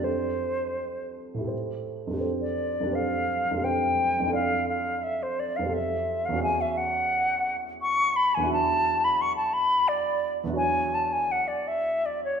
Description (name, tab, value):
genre	classical, impressionist duo for flute and grand piano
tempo	86 BPM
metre	3/4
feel	uneven beats, rubato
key	unclear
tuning	A4 = 440 Hz
part	concert flute	melody	0.0-12.4 s	C5 to C#6	-25 LUFS	left 1 dB	none
part	dark grand piano	accompaniment	0.0-12.4 s	E2 to E5	-30 LUFS	right 2 dB	none
room	moderate scoring stage reverb, RT60 1.7 s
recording	minimal, uncompressed stereo recording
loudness	-24 LUFS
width	side -7 dB against mid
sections	0.0-12.4 A section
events	none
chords	0.1 F69; 5.7 Am7/F; 6.4 E69; 8.5 Dadd9/E; 10.6 Esus2